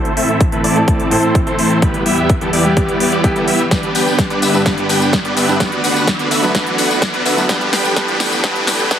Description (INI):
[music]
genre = EDM, festival progressive house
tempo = 127 BPM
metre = 4/4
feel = straight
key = unclear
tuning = A4 = 441 Hz
[part]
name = lush unison pad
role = sustained chords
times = 0.0-9.0 s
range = D2 to A4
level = -22 LUFS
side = left 1 dB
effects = chorus, sidechain pumping
[part]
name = big supersaw lead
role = riff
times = 0.0-9.0 s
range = G3 to G5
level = -16 LUFS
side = equal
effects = sidechain pumping, low-pass filter, dub echo
[part]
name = riser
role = sound effects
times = 1.4-9.0 s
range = none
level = -24 LUFS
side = equal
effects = none
[part]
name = big-room dance drum kit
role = drums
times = 0.1-9.0 s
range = hi-hat, snare drum, tambourine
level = -20 LUFS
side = left 1 dB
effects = overdrive
[part]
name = electronic kick drum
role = drums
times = 0.4-9.0 s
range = none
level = -17 LUFS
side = equal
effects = overdrive
[part]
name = warm concert grand piano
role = accompaniment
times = 0.8-9.0 s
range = F#2 to B4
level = -21 LUFS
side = right 1 dB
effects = sidechain pumping, dub echo
[sound]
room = moderate digital room reverb, RT60 1.1 s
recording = heavily compressed radio sound, multiband compression, high-pass filter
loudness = -12 LUFS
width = side -9 dB against mid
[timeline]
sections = 0.0-9.0 A section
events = build-up 0.0-9.0; filter sweep on supersaw synth 0.0-9.0; filter sweep on analog synth pad 0.0-9.0; filter sweep 0.0-9.0; riser 1.4-9.0; drum fill 3.7-9.0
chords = 0.0 Am; 1.8 Em; 3.7 G; 5.6 D; 7.5 A5